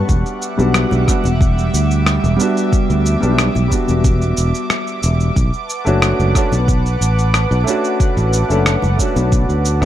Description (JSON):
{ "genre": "sunset chillout", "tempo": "91 BPM", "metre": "4/4", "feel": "straight", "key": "E dorian", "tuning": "A4 = 440 Hz", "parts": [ { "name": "warm grand piano", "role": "accompaniment", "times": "0.0-9.9 s", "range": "G3 to A4", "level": "-20 LUFS", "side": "equal", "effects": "auto-pan, low-pass filter, digital delay" }, { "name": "airy breathy pad", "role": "sustained chords", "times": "0.0-9.9 s", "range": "G3 to D6", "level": "-22 LUFS", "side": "right 3 dB", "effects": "chorus" }, { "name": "sustaining fretless electric bass", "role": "bass", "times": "0.1-9.9 s", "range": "E1 to D2", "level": "-16 LUFS", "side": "equal", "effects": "none" }, { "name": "electronic kick drum", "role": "drums", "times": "0.1-9.5 s", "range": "none", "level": "-16 LUFS", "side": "equal", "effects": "none" }, { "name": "electronic shaker and rim click", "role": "drums", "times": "0.1-9.9 s", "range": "none", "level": "-21 LUFS", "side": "equal", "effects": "none" }, { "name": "congas", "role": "percussion", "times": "0.9-9.3 s", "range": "none", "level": "-28 LUFS", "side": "left 4 dB", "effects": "none" } ], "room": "light reverb", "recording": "dark, warm production", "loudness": "-13 LUFS", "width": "side -12 dB against mid", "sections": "0.0-9.9 A section", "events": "filter sweep on grand piano 0.0-9.9", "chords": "0.1 Em9; 5.4 Bm7" }